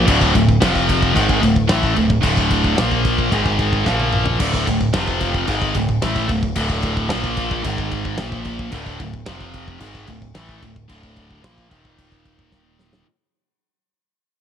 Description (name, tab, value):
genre	heavy metal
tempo	111 BPM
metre	4/4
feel	straight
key	D minor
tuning	A4 = 439 Hz
part	high-gain distorted guitar	riff	0.0-13.1 s	D2 to Bb3	-19 LUFS	equal	distortion
part	growling picked electric bass	bass	0.0-13.0 s	D1 to Bb1	-23 LUFS	equal	overdrive
part	big rock drum kit	drums	0.1-13.1 s	crash cymbal, kick drum, snare drum, toms	-22 LUFS	equal	none
room	small room ambience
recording	dry, close 1970s-style studio recording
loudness	-16 LUFS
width	side -8 dB against mid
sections	0.0-13.1 A section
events	fade-out 0.0-13.1; drum fill 3.9-4.4, 12.5-13.1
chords	0.1 D5; 0.6 F5; 1.2 D5; 2.8 Bb5; 3.3 G#5; 3.9 Bb5; 4.4 D5; 4.9 F5; 5.5 D5; 7.1 Bb5; 7.6 G#5; 8.2 Bb5; 8.7 D5; 9.3 F5; 9.8 Dm; 11.7 Eb5